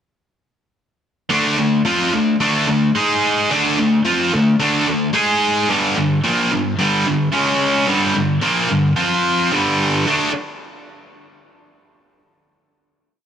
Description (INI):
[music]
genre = rock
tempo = 110 BPM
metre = 4/4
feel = straight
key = D minor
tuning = A4 = 441 Hz
[part]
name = high-gain distorted guitar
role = solo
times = 1.3-10.3 s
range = G2 to G#4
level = -15 LUFS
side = equal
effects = distortion
[sound]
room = moderate plate reverb, RT60 3.7 s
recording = bright 1980s-style digital production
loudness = -15 LUFS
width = side -8 dB against mid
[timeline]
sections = 1.3-10.1 riff; 10.1-12.3 final chord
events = none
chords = 1.3 Dm; 3.0 G#5; 3.5 Dm; 5.1 G#5; 5.7 G5; 7.3 C#5; 7.9 G5; 9.0 F5; 9.5 G5; 10.1 D5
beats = | 1.31 1.86 2.41 2.96 | 3.50 4.05 4.60 5.15 | 5.69 6.24 6.79 7.33 | 7.88 8.43 8.98 9.52 | 10.07